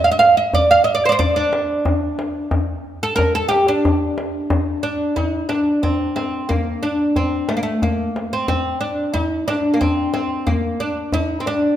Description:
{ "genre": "Persian modal ensemble", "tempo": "91 BPM", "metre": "3/4", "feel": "straight", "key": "D dastgah shur", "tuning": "A4 = 440 Hz", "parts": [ { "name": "oud", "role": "melody", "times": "0.0-11.8 s", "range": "A3 to F5", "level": "-17 LUFS", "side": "right 1 dB", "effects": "none" }, { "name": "tombak", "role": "percussion", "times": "0.2-11.6 s", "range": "none", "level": "-23 LUFS", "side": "left 2 dB", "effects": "none" } ], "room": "moderate concert hall reverb, RT60 1.7 s", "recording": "minimal, uncompressed stereo recording", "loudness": "-17 LUFS", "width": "side -11 dB against mid", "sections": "0.0-5.2 A section; 5.2-11.8 B section", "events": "none", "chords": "none" }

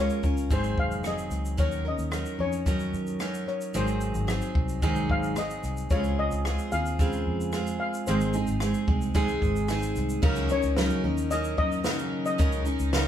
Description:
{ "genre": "acoustic pop", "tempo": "111 BPM", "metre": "4/4", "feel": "straight", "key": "unclear", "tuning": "A4 = 440 Hz", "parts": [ { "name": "steel pan", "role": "melody", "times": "0.0-13.1 s", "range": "Bb4 to F5", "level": "-32 LUFS", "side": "left 5 dB", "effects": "none" }, { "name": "picked steel-string acoustic guitar", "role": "accompaniment", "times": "0.0-13.1 s", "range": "Ab2 to Bb4", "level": "-28 LUFS", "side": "right 1 dB", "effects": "none" }, { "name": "vintage muted fingered electric bass", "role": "bass", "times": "0.0-13.1 s", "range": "F1 to Gb2", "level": "-31 LUFS", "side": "equal", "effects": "none" }, { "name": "compact cocktail drum kit", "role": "drums", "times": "0.1-13.1 s", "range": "crash cymbal, kick drum, rim click, shaker, snare drum", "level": "-29 LUFS", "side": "equal", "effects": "none" }, { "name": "warm studio string section", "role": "sustained chords", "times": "10.2-13.1 s", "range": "Eb3 to Eb4", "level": "-39 LUFS", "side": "left 2 dB", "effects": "none" } ], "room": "moderate large studio reverb, RT60 1.0 s", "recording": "band playing live in one room", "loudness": "-24 LUFS", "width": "side -10 dB against mid", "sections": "0.0-1.6 A section; 1.6-10.2 B section; 10.2-13.1 C section", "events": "none", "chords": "0.0 Bbm7; 0.5 Ab7; 1.6 Ebm7; 3.7 Ab7; 5.9 Dbmaj7; 8.1 Ab; 10.2 Ebm7/Db" }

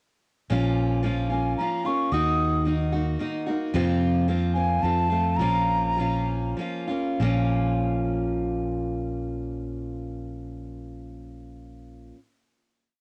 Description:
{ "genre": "acoustic folk duo or small band", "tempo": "94-112 BPM", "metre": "3/4", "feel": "straight", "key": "Bb minor", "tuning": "A4 = 439 Hz", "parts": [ { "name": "picked steel-string acoustic guitar", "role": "accompaniment", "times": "0.5-12.2 s", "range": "F2 to Gb4", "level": "-30 LUFS", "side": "equal", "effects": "cassette tape" }, { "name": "fingered electric bass", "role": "bass", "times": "0.5-12.1 s", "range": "Bb1 to F2", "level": "-29 LUFS", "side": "equal", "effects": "none" }, { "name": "wooden flute", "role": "melody", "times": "1.3-6.6 s", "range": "Ab5 to Eb6", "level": "-28 LUFS", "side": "equal", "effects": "cassette tape, plate reverb" } ], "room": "moderate booth ambience, RT60 0.3 s", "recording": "home recording on cassette", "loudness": "-25 LUFS", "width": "mono", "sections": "0.5-7.2 A section; 7.2-11.0 final chord", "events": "slowing down 3.7-7.2", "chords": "0.5 Bbm; 2.1 Ebm; 3.7 Fsus4; 4.8 F; 5.4 Bbm" }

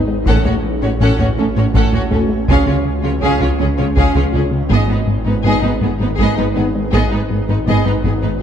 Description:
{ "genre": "cinematic, hybrid orchestral and electronic film score", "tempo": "54 BPM (dotted quarters)", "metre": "6/8", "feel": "straight", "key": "G# phrygian", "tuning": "A4 = 444 Hz", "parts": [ { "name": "granular cloud pad", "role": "sustained chords", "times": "0.0-8.4 s", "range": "G#3 to C#5", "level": "-24 LUFS", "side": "equal", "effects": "built-in reverb" }, { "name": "mellow French horn section", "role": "sustained chords", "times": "0.0-7.8 s", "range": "B3 to F#4", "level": "-26 LUFS", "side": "left 6 dB", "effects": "none" }, { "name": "wide detuned saw bass", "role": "bass", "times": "0.0-8.4 s", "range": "G#1 to C#2", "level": "-22 LUFS", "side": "equal", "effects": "chorus" }, { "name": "plucky analog bass", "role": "riff", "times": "0.1-8.3 s", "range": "C#2 to A3", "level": "-20 LUFS", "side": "left 2 dB", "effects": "none" }, { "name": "clear symphonic violin section", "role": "melody", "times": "0.3-8.3 s", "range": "G#4 to F#5", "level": "-26 LUFS", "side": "left 4 dB", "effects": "none" }, { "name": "rich studio violin section", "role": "second line", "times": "0.3-8.4 s", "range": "B3 to A4", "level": "-24 LUFS", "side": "left 3 dB", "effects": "none" }, { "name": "rich symphonic viola section", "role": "accompaniment", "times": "0.3-8.3 s", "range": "B3 to C#4", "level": "-23 LUFS", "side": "right 4 dB", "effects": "none" }, { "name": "clear symphonic cello section", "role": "bass", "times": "0.3-8.3 s", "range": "G#2 to C#3", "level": "-23 LUFS", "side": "right 4 dB", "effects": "none" }, { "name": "rich symphonic double bass section", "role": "bass", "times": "0.3-8.1 s", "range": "G#1 to C#2", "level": "-22 LUFS", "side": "right 4 dB", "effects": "none" }, { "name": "solo taiko drums", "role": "drums", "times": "0.3-7.6 s", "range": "none", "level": "-20 LUFS", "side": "equal", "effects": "none" } ], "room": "moderate concert hall reverb, RT60 2.1 s", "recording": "dark, warm production", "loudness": "-13 LUFS", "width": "side -9 dB against mid", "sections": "0.0-8.4 A section", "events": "none", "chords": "0.3 F#m/A; 2.5 C#; 4.7 G#m" }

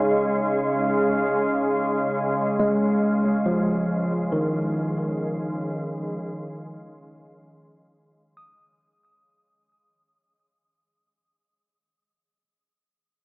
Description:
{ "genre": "ambient", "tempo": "free time", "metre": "none", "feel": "none", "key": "Db major", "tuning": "A4 = 440 Hz", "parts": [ { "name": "mellow tine electric piano", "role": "arpeggios", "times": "0.0-12.4 s", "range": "Eb3 to Eb6", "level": "-25 LUFS", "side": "equal", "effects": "medium stereo tremolo, tape echo" }, { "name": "organ-like drone", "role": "drone", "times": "0.0-9.2 s", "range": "Db3 to Ab3", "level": "-23 LUFS", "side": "equal", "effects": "ensemble chorus, built-in reverb" } ], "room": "wet huge ambient reverb, RT60 8.4 s", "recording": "worn, warbling old tape, cassette tape, warbly pitch drift, AM radio sound", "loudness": "-21 LUFS", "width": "side -24 dB against mid", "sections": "0.0-9.1 A section", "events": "fade-out 2.1-9.1", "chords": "0.0 Absus4/Db" }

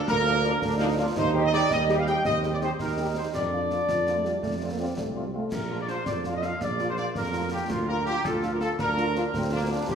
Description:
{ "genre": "military-style march for wind band", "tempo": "110 BPM (dotted quarters)", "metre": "6/8", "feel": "straight", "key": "Bb major", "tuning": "A4 = 440 Hz", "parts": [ { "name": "mellow trombone section", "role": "sustained chords", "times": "0.0-9.9 s", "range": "G3 to F4", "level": "-32 LUFS", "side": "right 4 dB", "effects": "none" }, { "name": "dark trumpet section", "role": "melody", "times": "0.1-9.9 s", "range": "F4 to G5", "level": "-29 LUFS", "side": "equal", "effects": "none" }, { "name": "mellow hollow small flute group", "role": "second line", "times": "0.1-9.9 s", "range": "F4 to G5", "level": "-32 LUFS", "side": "equal", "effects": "none" }, { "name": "mellow tuba", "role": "bass", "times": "0.1-9.9 s", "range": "Bb1 to F2", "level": "-29 LUFS", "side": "right 2 dB", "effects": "none" }, { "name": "concert snare drum, concert bass drum and clash cymbals", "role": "drums", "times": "0.1-9.9 s", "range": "none", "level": "-36 LUFS", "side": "left 1 dB", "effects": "none" }, { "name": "warm French horn section", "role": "accompaniment", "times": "0.3-9.8 s", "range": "F3 to G4", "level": "-33 LUFS", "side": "left 2 dB", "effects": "none" }, { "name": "mellow euphonium", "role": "second line", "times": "3.9-5.5 s", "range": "F3 to C4", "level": "-34 LUFS", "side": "right 1 dB", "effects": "none" } ], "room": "wet scoring stage reverb, RT60 1.7 s", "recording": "small room ambience", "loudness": "-24 LUFS", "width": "side -7 dB against mid", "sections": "0.0-9.9 A section", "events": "none", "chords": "0.0 Bb/D; 1.2 Cm/Eb; 3.3 Bb/F; 4.4 F; 5.5 Bb; 7.7 Bb/D" }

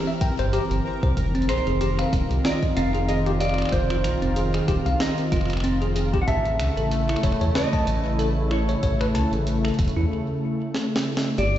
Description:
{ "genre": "IDM", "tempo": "94 BPM", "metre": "4/4", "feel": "swing 56% on 16ths", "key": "unclear", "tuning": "A4 = 440 Hz", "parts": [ { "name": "warm analog pad", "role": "sustained chords", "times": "0.0-11.6 s", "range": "C#3 to Bb4", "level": "-26 LUFS", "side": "equal", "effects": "chorus" }, { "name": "pulsing gated texture", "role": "texture", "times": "0.0-10.1 s", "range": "A3 to Bb5", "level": "-36 LUFS", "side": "equal", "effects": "chorus, built-in reverb" }, { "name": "bell-like tine electric piano", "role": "arpeggios", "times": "0.1-11.4 s", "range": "C4 to A5", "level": "-29 LUFS", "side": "left 1 dB", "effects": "fast stereo tremolo, ping-pong delay" }, { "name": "electronic kick drum", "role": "drums", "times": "0.2-9.9 s", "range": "none", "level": "-24 LUFS", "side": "equal", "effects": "none" }, { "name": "jungle sampler-style drum kit", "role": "drums", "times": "0.2-11.6 s", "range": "finger snaps, hi-hat, snare drum", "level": "-31 LUFS", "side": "right 1 dB", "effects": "ping-pong delay" }, { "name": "round analog bass", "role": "bass", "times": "0.4-11.6 s", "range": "Eb1 to E2", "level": "-24 LUFS", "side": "equal", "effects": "none" }, { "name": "mellow electric guitar", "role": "melody", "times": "1.5-11.6 s", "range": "C5 to F#5", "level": "-29 LUFS", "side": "right 1 dB", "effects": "ping-pong delay" } ], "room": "moderate lush hall reverb, RT60 3.0 s", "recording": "played on a big sound system in a bare room, stone room reverb, nothing above 7.9 kHz", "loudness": "-20 LUFS", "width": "side -12 dB against mid", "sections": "0.0-11.4 A section", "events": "break 10.1-11.4; drum fill 10.7-11.4", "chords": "0.0 C7; 1.2 F7(no3); 6.3 A" }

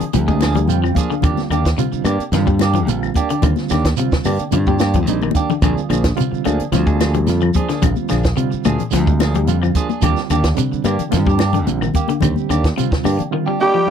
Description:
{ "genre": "afrobeat", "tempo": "109 BPM", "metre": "4/4", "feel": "straight", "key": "unclear", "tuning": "A4 = 439 Hz", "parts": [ { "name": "electric guitar at the edge of break-up", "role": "arpeggios", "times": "0.0-13.9 s", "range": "Bb2 to Ab3", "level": "-22 LUFS", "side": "left 9 dB", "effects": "tape echo" }, { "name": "clean electric guitar", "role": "stabs", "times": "0.0-13.8 s", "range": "F3 to Ab4", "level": "-23 LUFS", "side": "right 6 dB", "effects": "phaser" }, { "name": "modern bright fingered electric bass", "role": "bass", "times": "0.0-13.2 s", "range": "Bb1 to G2", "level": "-18 LUFS", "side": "equal", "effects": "none" }, { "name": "compact cocktail drum kit", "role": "drums", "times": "0.0-13.9 s", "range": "hi-hat, kick drum, snare drum, toms", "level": "-20 LUFS", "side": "equal", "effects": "none" }, { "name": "congas", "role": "percussion", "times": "0.0-13.3 s", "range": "none", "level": "-23 LUFS", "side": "left 18 dB", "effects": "none" }, { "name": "shekere", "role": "percussion", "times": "0.0-13.3 s", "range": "none", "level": "-28 LUFS", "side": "right 9 dB", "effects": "none" }, { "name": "barky reed electric piano", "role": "accompaniment", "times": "0.1-13.9 s", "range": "D3 to Ab5", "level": "-23 LUFS", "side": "right 16 dB", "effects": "overdrive, medium tremolo" }, { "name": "claves", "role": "percussion", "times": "0.4-13.2 s", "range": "none", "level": "-32 LUFS", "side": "left 22 dB", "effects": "none" }, { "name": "raspy tenor saxophone", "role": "melody", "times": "13.6-13.9 s", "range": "G4", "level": "-14 LUFS", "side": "right 2 dB", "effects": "none" }, { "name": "growling bass trombone", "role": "second line", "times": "13.6-13.9 s", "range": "G3", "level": "-22 LUFS", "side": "left 11 dB", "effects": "none" }, { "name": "raspy alto saxophone", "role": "second line", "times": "13.6-13.9 s", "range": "G4", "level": "-21 LUFS", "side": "right 5 dB", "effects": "none" } ], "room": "little or no reverb", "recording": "dry, close 1970s-style studio recording", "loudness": "-15 LUFS", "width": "side -8 dB against mid", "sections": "0.0-13.9 A section", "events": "reed electric piano fill 0.1-1.2, 13.3-13.9; drum fill 5.2-5.6", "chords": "0.0 Bb7; 1.2 Ebmaj7; 5.6 Bb7; 10.0 Ebmaj7" }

